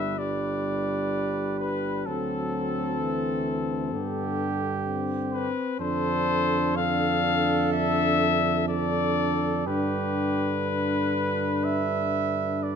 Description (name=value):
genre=classical, brass quintet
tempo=60-65 BPM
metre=4/4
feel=straight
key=G major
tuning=A4 = 437 Hz
part: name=warm trumpet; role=melody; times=0.0-12.8 s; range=A4 to F5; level=-28 LUFS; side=left 7 dB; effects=none
part: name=warm trumpet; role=second line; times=0.0-12.8 s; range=G4 to E5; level=-32 LUFS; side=right 8 dB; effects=none
part: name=mellow French horn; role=accompaniment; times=0.0-12.8 s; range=B3 to D4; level=-31 LUFS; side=left 2 dB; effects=none
part: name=warm trombone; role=accompaniment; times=0.0-12.8 s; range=D3 to G3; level=-33 LUFS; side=right 2 dB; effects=none
part: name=mellow tuba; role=bass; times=0.0-12.8 s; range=G1 to G2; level=-30 LUFS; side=right 4 dB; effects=none
room=light reverb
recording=minimal, uncompressed stereo recording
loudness=-24 LUFS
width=side -7 dB against mid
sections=0.0-12.8 A section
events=none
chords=0.0 G; 2.1 D7; 3.9 G; 5.8 Dm7/F; 9.7 G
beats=0.19 1.13 | 2.06 3.00 3.93 4.86 | 5.80 6.77 7.72 8.68 | 9.66 10.66 11.65 12.64